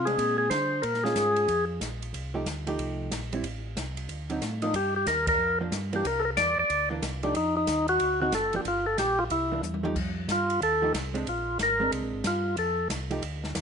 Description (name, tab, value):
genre	soul jazz organ trio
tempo	184 BPM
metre	4/4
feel	swing 63% on 8ths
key	unclear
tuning	A4 = 440 Hz
part	percussive tonewheel organ	melody	0.0-1.7, 4.6-12.9 s	D4 to D5	-25 LUFS	left 1 dB	slow rotary speaker
part	mellow tonewheel organ	bass	0.0-13.6 s	F#1 to D3	-34 LUFS	equal	slow rotary speaker
part	hollow-body jazz guitar	accompaniment	0.1-13.2 s	D3 to G4	-34 LUFS	right 3 dB	none
part	open jazz drum kit	drums	0.1-13.6 s	crash cymbal, hi-hat, kick drum, ride cymbal, snare drum, toms	-35 LUFS	equal	none
room	moderate plate reverb, RT60 1.6 s, small room reverb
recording	rough home demo mix, nothing above 10.7 kHz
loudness	-25 LUFS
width	side -6 dB against mid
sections	0.0-10.0 A section; 10.0-13.6 B section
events	band accent 5.2; drum fill 9.6-10.0; tonewheel organ solo 10.0-13.6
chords	0.0 Bb9; 0.8 Bbm7; 2.1 F9; 3.4 Am; 4.1 D7b9; 4.7 Gm7; 6.1 C9; 7.4 Ebmadd9; 8.0 D7b9; 8.7 Gm; 9.3 C9; 10.0 F9; 11.3 Bb9; 12.6 F7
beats	0.18 0.51 | 0.84 1.16 1.49 1.81 | 2.14 2.47 2.79 3.12 | 3.44 3.77 4.10 4.42 | 4.75 5.07 5.40 5.73 | 6.05 6.38 6.70 7.03 | 7.36 7.68 8.01 8.33 | 8.66 8.98 9.31 9.64 | 9.96 10.29 10.61 10.94 | 11.27 11.59 11.92 12.24 | 12.57 12.90 13.22 13.55